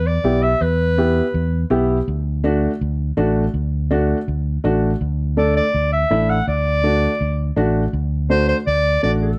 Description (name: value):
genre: latin, cumbia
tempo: 164 BPM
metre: 4/4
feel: straight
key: unclear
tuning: A4 = 440 Hz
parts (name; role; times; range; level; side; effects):
- warm clarinet; melody; 0.0-1.7, 5.4-9.4 s; A4 to F#5; -22 LUFS; equal; none
- fingered electric bass; bass; 0.0-9.3 s; A1 to E2; -22 LUFS; equal; none
- dark upright piano; accompaniment; 0.2-9.3 s; A3 to A4; -22 LUFS; equal; none
room: light reverb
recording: none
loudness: -19 LUFS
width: mono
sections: 0.0-9.4 A section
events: none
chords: 0.0 Em; 2.1 D